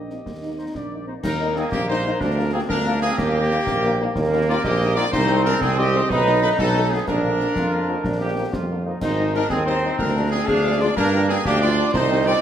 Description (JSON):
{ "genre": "military-style march for wind band", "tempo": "123 BPM (dotted quarters)", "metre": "6/8", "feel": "straight", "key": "Eb major", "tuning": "A4 = 440 Hz", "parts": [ { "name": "dark trumpet section", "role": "melody", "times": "0.0-12.4 s", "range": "G4 to F5", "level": "-25 LUFS", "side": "equal", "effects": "none" }, { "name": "dark euphonium", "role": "second line", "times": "0.0-1.2 s", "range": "Bb3 to Eb4", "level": "-33 LUFS", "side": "right 2 dB", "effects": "none" }, { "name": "warm woodwind section", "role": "second line", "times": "0.0-12.4 s", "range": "Bb3 to Eb5", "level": "-26 LUFS", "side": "left 2 dB", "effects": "none" }, { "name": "warm tuba", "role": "bass", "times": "0.0-12.3 s", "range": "Ab1 to G2", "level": "-23 LUFS", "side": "right 2 dB", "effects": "none" }, { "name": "warm French horn section", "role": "accompaniment", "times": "0.1-12.3 s", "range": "D3 to Eb4", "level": "-29 LUFS", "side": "left 4 dB", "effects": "none" }, { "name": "concert snare drum, concert bass drum and clash cymbals", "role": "drums", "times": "0.1-12.4 s", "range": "none", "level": "-31 LUFS", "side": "left 2 dB", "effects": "none" }, { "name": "clear trombone section", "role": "sustained chords", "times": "1.2-12.4 s", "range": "Bb3 to G4", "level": "-26 LUFS", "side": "right 2 dB", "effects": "none" } ], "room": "wet recital hall reverb, RT60 1.5 s", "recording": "none", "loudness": "-18 LUFS", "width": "side -9 dB against mid", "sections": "0.0-1.2 A section; 1.2-12.4 A section", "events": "none", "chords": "0.0 Eb; 2.2 Bb7/D; 3.2 Eb; 5.1 Ab/C; 6.1 B7; 7.1 Bb; 9.0 Abmaj7; 10.0 Ddim; 11.0 Gm7", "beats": "| 0.26 0.74 | 1.23 1.72 | 2.21 2.69 | 3.18 3.67 | 4.15 4.64 | 5.13 5.61 | 6.10 6.58 | 7.07 7.56 | 8.04 8.53 | 9.02 9.51 | 9.99 10.48 | 10.96 11.45 | 11.94" }